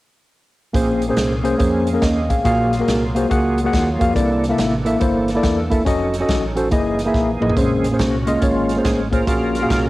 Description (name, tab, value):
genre	uptempo gospel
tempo	141 BPM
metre	4/4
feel	swing 64% on 8ths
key	Bb minor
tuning	A4 = 439 Hz
part	tine electric piano	accompaniment	0.7-9.9 s	Bb2 to Gb5	-18 LUFS	left 1 dB	slow stereo tremolo, cassette tape
part	deep dub fingered electric bass	bass	0.7-9.9 s	E1 to F2	-25 LUFS	equal	none
part	swinging big-band drum kit	drums	0.7-9.8 s	hi-hat, kick drum, snare drum, toms	-22 LUFS	equal	cassette tape
part	bright tonewheel organ	sustained chords	0.8-9.9 s	Db3 to Bb4	-25 LUFS	right 2 dB	fast rotary speaker, chorus vibrato, cassette tape
room	light reverb, small room ambience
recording	home recording on cassette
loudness	-16 LUFS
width	side -18 dB against mid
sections	0.7-7.6 A section; 7.6-9.9 B section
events	drum fill 7.1-7.6; tonewheel organ solo 7.6-9.9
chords	0.7 Bbm9; 2.5 Gbmaj9/Bb; 4.2 C13; 5.9 F7b9b13; 6.7 Gb13; 7.6 Bbm9; 9.3 Gbmaj9/Bb